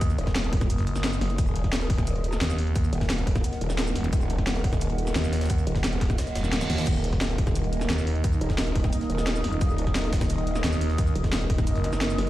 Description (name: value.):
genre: dark technical drum and bass.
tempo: 175 BPM.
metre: 4/4.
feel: straight.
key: Eb minor.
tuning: A4 = 441 Hz.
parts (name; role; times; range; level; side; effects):
growling FM bass; bass; 0.0-12.2 s; Eb1 to Eb2; -25 LUFS; equal; none.
drum and bass drum kit; drums; 0.0-12.3 s; crash cymbal, hi-hat, shaker, snare drum; -31 LUFS; equal; small room ambience.
electronic kick drum; drums; 0.0-11.7 s; none; -25 LUFS; equal; overdrive, small room ambience.
jungle sampler-style drum kit; drums; 0.0-12.3 s; hi-hat, snare drum; -41 LUFS; equal; high-pass filter on hats, small room ambience, high-pass filter on snare.
warbly tape-like pad; texture; 0.0-12.3 s; Bb3 to Eb6; -33 LUFS; right 1 dB; chorus, built-in reverb, sidechain pumping.
growl bass; bass; 0.2-12.3 s; Eb1 to Gb1; -27 LUFS; equal; chorus, tube saturation, sidechain pumping.
zap and reverse cymbal; sound effects; 4.0-6.9, 11.8-11.9 s; none; -37 LUFS; right 2 dB; none.
dark analog pad; sustained chords; 7.6-12.3 s; Eb4 to Eb5; -35 LUFS; right 2 dB; chorus, sidechain pumping.
room: little or no reverb.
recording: played on a big sound system in a bare room, large studio reverb.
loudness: -23 LUFS.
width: side -15 dB against mid.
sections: 0.0-12.3 A section.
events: kick drops out 6.2-6.9; reverse cymbal 6.3-6.9.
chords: 0.0 Eb5.